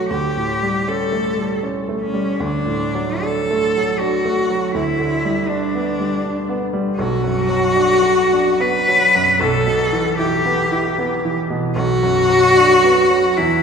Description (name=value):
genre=classical, romantic duo for cello and grand piano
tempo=66-82 BPM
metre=3/4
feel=rubato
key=B minor from 7.0 s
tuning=A4 = 439 Hz
part: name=clear cello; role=melody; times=0.0-13.6 s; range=C#4 to B4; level=-16 LUFS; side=left 1 dB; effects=none
part: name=clear grand piano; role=accompaniment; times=0.0-13.6 s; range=B1 to F#4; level=-20 LUFS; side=right 2 dB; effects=none
room=wet church reverb, RT60 2.9 s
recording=recorded in a church or concert hall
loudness=-15 LUFS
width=side -6 dB against mid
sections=0.0-13.6 A section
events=none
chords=0.1 A7/D; 2.4 D; 4.8 G/D; 7.0 Bm; 9.4 Em/B; 11.8 Bm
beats=| 0.11 0.89 1.64 | 2.40 3.24 4.00 | 4.75 5.50 6.25 | 6.98 7.75 8.62 | 9.40 10.19 10.98 | 11.76 12.56 13.38